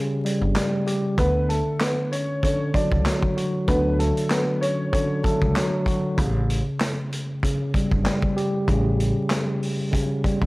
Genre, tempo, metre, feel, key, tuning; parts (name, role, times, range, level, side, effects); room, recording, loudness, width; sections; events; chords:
hip hop, boom-bap hip-hop; 96 BPM; 4/4; swing 55% on 16ths; D major; A4 = 441 Hz
tine electric piano; accompaniment; 0.0-10.5 s; C#3 to G4; -24 LUFS; equal; medium stereo tremolo, high-pass filter, low-pass filter
vintage drum kit; drums; 0.3-10.5 s; handclaps, hi-hat, kick drum, snare drum; -26 LUFS; equal
upright bass; bass; 0.4-10.5 s; G1 to D2; -24 LUFS; equal
warm upright piano; melody; 1.2-5.5 s; A3 to D5; -26 LUFS; equal; high-pass filter, low-pass filter, tape echo
little or no reverb; dry, gritty hardware recording, vinyl crackle; -20 LUFS; side -22 dB against mid
0.0-1.2 A section; 1.2-10.5 A section
break 0.0-1.2
0.0 A7 (rootless); 1.2 Dmaj7; 6.2 A7